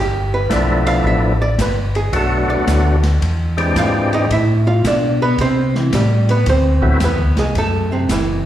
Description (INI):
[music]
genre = soul jazz organ trio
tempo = 110 BPM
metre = 4/4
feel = swing 67% on 8ths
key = unclear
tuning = A4 = 441 Hz
[part]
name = archtop guitar, miked and amplified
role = accompaniment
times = 0.0-8.5 s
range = C3 to F5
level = -19 LUFS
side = right 2 dB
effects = slapback echo
[part]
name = mellow tonewheel organ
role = bass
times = 0.0-8.5 s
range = F#1 to C3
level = -17 LUFS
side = equal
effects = slow rotary speaker
[part]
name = percussive tonewheel organ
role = melody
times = 0.5-7.0 s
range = E3 to G4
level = -18 LUFS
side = left 1 dB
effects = overdrive, fast rotary speaker, slapback echo
[part]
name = open jazz drum kit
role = drums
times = 0.5-8.3 s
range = hi-hat, kick drum, ride cymbal, snare drum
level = -23 LUFS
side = left 1 dB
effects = none
[sound]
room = light reverb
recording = live gig heard through the venue's PA, recital hall reverb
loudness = -13 LUFS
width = side -12 dB against mid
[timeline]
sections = 0.0-8.5 A section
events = hollow-body jazz guitar solo 0.0-8.5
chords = 0.0 G13; 2.1 Bm7; 3.2 E7alt; 4.3 Am7; 6.5 D13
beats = 0.49 1.04 1.58 | 2.12 2.67 3.21 3.75 | 4.29 4.84 5.38 5.92 | 6.47 7.01 7.55 8.09